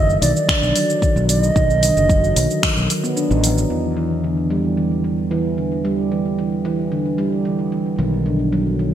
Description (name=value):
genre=organic downtempo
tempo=112 BPM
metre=4/4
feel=straight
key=unclear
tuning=A4 = 440 Hz
part: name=bass bansuri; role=melody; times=0.0-3.1 s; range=D5 to D#5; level=-20 LUFS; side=right 3 dB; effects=ping-pong delay
part: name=handpan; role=arpeggios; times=0.0-8.9 s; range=D3 to D#4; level=-20 LUFS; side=right 1 dB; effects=low-pass filter, ping-pong delay
part: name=fretless electric bass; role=bass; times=0.0-8.9 s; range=F#1 to E2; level=-22 LUFS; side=equal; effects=tube saturation, sidechain pumping
part: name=deep house drum kit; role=drums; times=0.1-3.7 s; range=cabasa, finger snaps, hi-hat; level=-22 LUFS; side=equal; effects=small room ambience, gated reverb
part: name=electronic kick drum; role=drums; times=0.5-2.7 s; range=none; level=-19 LUFS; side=left 1 dB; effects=small room ambience
room=moderate lush hall reverb, RT60 1.6 s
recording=bright 1980s-style digital production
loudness=-16 LUFS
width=side -10 dB against mid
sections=0.0-3.7 A section; 3.7-8.9 B section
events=kick drops out 3.2-3.7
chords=0.0 B; 3.7 Em; 8.0 B